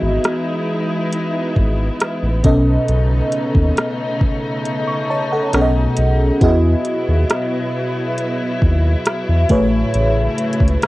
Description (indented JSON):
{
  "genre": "contemporary R&B",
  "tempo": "68 BPM",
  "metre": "4/4",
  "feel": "straight",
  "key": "E major",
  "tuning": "A4 = 444 Hz",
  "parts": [
    { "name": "FM electric piano with soft pad layer", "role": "accompaniment", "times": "0.0-10.9 s", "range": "A2 to C#6", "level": "-19 LUFS", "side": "equal", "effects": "chorus, cassette tape, plate reverb" },
    { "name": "warm studio string section", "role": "sustained chords", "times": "0.0-10.9 s", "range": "B2 to E4", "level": "-23 LUFS", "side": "left 1 dB", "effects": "sidechain pumping, cassette tape, plate reverb" },
    { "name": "round analog bass", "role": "bass", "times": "0.0-10.8 s", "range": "G#1 to E2", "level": "-16 LUFS", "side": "equal", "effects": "none" },
    { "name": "smooth R&B drum kit", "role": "drums", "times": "0.2-10.9 s", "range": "hi-hat, kick drum, rim click", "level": "-17 LUFS", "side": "equal", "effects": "cassette tape" }
  ],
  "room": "light reverb",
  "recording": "home recording on cassette",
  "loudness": "-15 LUFS",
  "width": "side -18 dB against mid",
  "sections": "0.0-10.9 A section",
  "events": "none",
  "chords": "0.0 Emaj7; 2.4 B9; 5.5 B13; 6.4 Emaj7; 9.5 Amaj7",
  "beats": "0.24 1.12 2.00 | 2.88 3.77 4.65 5.53 | 6.41 7.30 8.18 9.06 | 9.94 10.82"
}